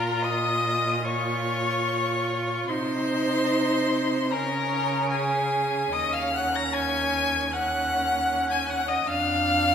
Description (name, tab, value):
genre	classical, slow romantic movement for string quartet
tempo	64-82 BPM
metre	4/4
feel	rubato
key	Bb minor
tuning	A4 = 440 Hz
part	clear violin	melody	0.0-9.7 s	Ab5 to Bb6	-27 LUFS	left 4 dB	none
part	rich violin	second line	0.0-9.7 s	Ab4 to Bb5	-28 LUFS	left 1 dB	none
part	rich viola	accompaniment	0.0-9.7 s	Db4 to F4	-29 LUFS	right 2 dB	none
part	clear cello	bass	0.0-9.7 s	Eb2 to Db3	-31 LUFS	right 3 dB	none
room	wet recital hall reverb, RT60 1.7 s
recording	recorded in a church or concert hall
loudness	-23 LUFS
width	side -8 dB against mid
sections	0.0-9.7 A section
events	none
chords	0.0 Bbm; 2.7 Cm; 4.3 Bbm/Db; 5.9 Ebm7; 9.1 Dm/F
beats	0.21 1.03 1.88 | 2.69 3.49 4.31 5.11 | 5.93 6.73 7.52 8.30 | 9.06